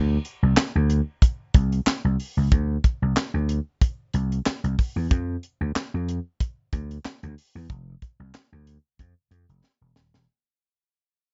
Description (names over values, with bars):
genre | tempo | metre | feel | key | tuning
funk | 93 BPM | 4/4 | swing 56% on 16ths | unclear | A4 = 441 Hz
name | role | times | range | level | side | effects
vintage slap bass | bass | 0.0-10.2 s | Eb1 to F2 | -25 LUFS | equal | none
tight funk drum kit | drums | 0.2-10.3 s | handclaps, hi-hat, kick drum, snare drum | -23 LUFS | equal | none
room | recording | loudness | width
little or no reverb | dark, warm production, nothing above 7.7 kHz | -24 LUFS | mono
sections
0.0-10.3 A section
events
fade-out 0.0-10.3; drum fill 9.6-10.3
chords
none